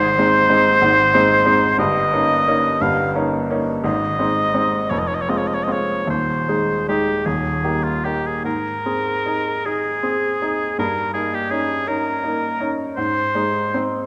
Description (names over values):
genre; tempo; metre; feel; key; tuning
classical, romantic duo for oboe and grand piano; 49-64 BPM (dotted quarters); 6/8; rubato; Ab major; A4 = 440 Hz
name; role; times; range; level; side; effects
warm oboe; melody; 0.0-13.8 s; F4 to F5; -21 LUFS; equal; none
clear baby grand piano; accompaniment; 0.0-14.1 s; Eb1 to Ab4; -23 LUFS; equal; none
room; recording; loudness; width
wet scoring stage reverb, RT60 1.7 s; none; -19 LUFS; mono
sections
0.0-8.4 A section; 8.4-14.1 B section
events
none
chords
0.0 Ab; 1.8 Eb7/G; 3.8 Ab; 4.9 Fm; 6.1 Ab/Eb; 7.3 Eb; 8.4 Ab; 10.8 Eb7/G; 13.0 Ab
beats
0.81 | 1.78 2.82 | 3.84 4.91 | 6.08 7.26 | 8.45 9.65 | 10.77 11.87 | 12.96